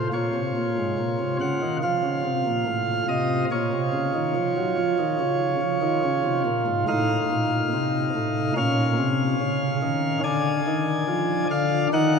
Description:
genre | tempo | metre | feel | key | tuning
classical, chorale-style piece for pipe organ | 71 BPM | 4/4 | rubato | Bb minor | A4 = 441 Hz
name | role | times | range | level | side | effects
chamber organ, principal chorus | solo | 0.0-12.2 s | Ab2 to Ab5 | -21 LUFS | equal | none
room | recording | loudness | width
wet cathedral reverb, RT60 5.3 s | none | -21 LUFS | side -5 dB against mid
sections
0.0-12.2 A section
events
none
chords
0.1 Bbm; 1.8 F; 3.5 Bbm; 6.9 F7/A; 8.6 Bbm; 10.2 Ddim

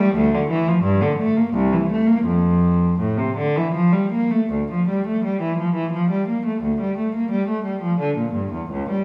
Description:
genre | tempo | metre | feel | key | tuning
classical, baroque-style suite movement for unaccompanied cello | 76-89 BPM | 3/4 | rubato | F major, D minor from 4.5 s | A4 = 441 Hz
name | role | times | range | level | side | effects
rich cello | solo | 0.0-9.0 s | C2 to Bb3 | -20 LUFS | equal | none
room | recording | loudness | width
wet recital hall reverb, RT60 1.6 s | studio ambience | -20 LUFS | mono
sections
0.0-4.5 A section; 4.5-9.0 A section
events
none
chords
none

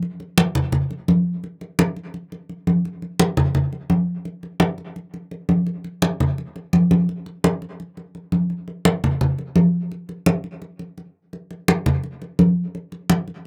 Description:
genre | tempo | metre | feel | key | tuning
latin | 170 BPM | 4/4 | straight | none | none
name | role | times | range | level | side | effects
congas | percussion | 0.0-13.5 s | none | -21 LUFS | equal | none
room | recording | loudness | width
little or no reverb | recorded outdoors, with no room sound | -21 LUFS | mono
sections
0.0-13.5 A section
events
none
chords
none

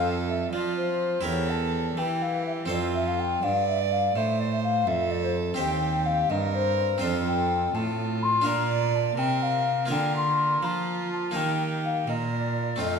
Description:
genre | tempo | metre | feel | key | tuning
classical, baroque-style sonata movement with continuo | 83 BPM (dotted quarters) | 12/8 | straight | F major, Bb major from 5.6 s | A4 = 442 Hz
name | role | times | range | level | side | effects
mellow hollow baroque flute | melody | 0.0-13.0 s | C5 to C6 | -27 LUFS | left 4 dB | none
rich violin | second line | 0.0-13.0 s | F4 to D5 | -32 LUFS | right 9 dB | none
harpsichord | accompaniment | 0.0-13.0 s | Eb2 to C5 | -30 LUFS | right 1 dB | none
dark cello | bass | 0.0-13.0 s | Eb2 to F3 | -30 LUFS | right 2 dB | none
room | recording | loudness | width
wet recital hall reverb, RT60 1.6 s | minimal, uncompressed stereo recording | -23 LUFS | side -6 dB against mid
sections
0.0-13.0 A section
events
none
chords
0.0 F; 1.3 Edim; 2.7 F; 5.6 Cm/Eb; 7.0 F; 8.5 Bb; 9.9 Bb/D; 11.4 Eb

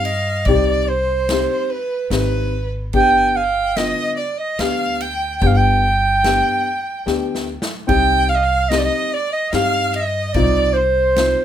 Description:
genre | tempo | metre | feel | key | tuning
klezmer | 73 BPM | 3/4 | straight | unclear | A4 = 440 Hz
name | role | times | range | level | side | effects
mellow clarinet | melody | 0.0-11.4 s | B4 to G5 | -18 LUFS | right 3 dB | none
clear violin | second line | 0.0-11.4 s | B4 to Ab5 | -26 LUFS | left 2 dB | none
dark upright piano | accompaniment | 0.0-11.4 s | D3 to G4 | -22 LUFS | left 7 dB | none
upright bass | bass | 0.0-11.3 s | G1 to G2 | -22 LUFS | equal | none
street-band drum kit | drums | 0.0-11.4 s | kick drum, ride cymbal, snare drum | -26 LUFS | equal | none
room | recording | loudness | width
light reverb | minimal, uncompressed stereo recording | -15 LUFS | side -10 dB against mid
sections
0.0-7.9 A section; 7.9-11.4 A section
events
drum fill 7.1-7.9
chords
0.0 Cm; 2.9 G; 7.9 Cm

